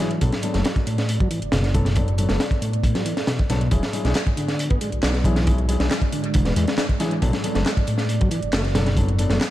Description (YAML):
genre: breakbeat, breaks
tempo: 137 BPM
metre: 4/4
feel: straight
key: E mixolydian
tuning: A4 = 441 Hz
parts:
  - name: deep dark ambient pad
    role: sustained chords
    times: 0.0-9.5 s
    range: G#3 to D5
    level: -31 LUFS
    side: right 2 dB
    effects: chorus, built-in reverb, sidechain pumping
  - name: tonewheel organ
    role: riff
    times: 0.0-9.4 s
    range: A2 to D4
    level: -26 LUFS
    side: equal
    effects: chorus vibrato, slow rotary speaker, overdrive, low-pass filter, dub echo
  - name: dark concert grand piano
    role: stabs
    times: 0.0-9.4 s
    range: F#3 to A4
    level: -29 LUFS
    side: left 3 dB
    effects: vintage 12-bit sampler grit, dub echo
  - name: garage drum kit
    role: drums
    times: 0.0-9.5 s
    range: handclaps, hi-hat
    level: -34 LUFS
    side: equal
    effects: dub echo
  - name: fat analog bass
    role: bass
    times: 0.2-9.4 s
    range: E1 to E2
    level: -22 LUFS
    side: equal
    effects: tube saturation
  - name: crunchy breakbeat drum kit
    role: drums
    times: 0.2-9.5 s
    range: hi-hat, kick drum, snare drum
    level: -23 LUFS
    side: equal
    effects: none
room: light reverb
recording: echo-heavy mix, vinyl crackle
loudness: -19 LUFS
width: side -14 dB against mid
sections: 0.0-9.5 A section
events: none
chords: 0.2 Bm7; 3.7 E9; 7.2 Bm7